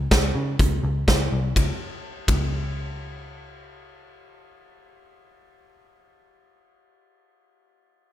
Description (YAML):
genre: jangly indie pop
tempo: 124 BPM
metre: 4/4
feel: straight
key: unclear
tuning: A4 = 440 Hz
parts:
  - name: vintage muted picked electric bass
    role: bass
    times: 0.0-6.3 s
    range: C2 to Db3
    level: -25 LUFS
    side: left 1 dB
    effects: none
  - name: big rock drum kit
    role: drums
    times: 0.1-2.4 s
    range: hi-hat, kick drum, ride cymbal, snare drum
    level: -23 LUFS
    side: equal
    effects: none
room: little or no reverb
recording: none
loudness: -21 LUFS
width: side -12 dB against mid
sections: 0.0-1.6 A section; 1.6-5.4 B section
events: none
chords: none